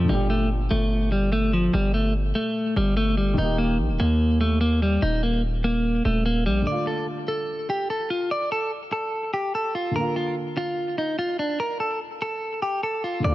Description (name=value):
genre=hip hop, trap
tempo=146 BPM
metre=4/4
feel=half-time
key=D phrygian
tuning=A4 = 442 Hz
part: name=clean electric guitar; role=melody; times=0.0-13.3 s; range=F3 to D5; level=-24 LUFS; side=equal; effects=digital delay
part: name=dark baby grand piano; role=accompaniment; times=0.0-13.3 s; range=Bb2 to G4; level=-31 LUFS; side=equal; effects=none
part: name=distorted 808-style bass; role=bass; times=0.0-6.7, 13.2-13.3 s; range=Eb1 to Eb2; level=-23 LUFS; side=equal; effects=distortion
room=light reverb, studio ambience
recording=none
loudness=-22 LUFS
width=side -16 dB against mid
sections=0.0-6.7 A section; 6.7-13.2 B section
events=none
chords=0.1 Gm; 3.4 Eb; 6.7 Dm; 10.0 Bb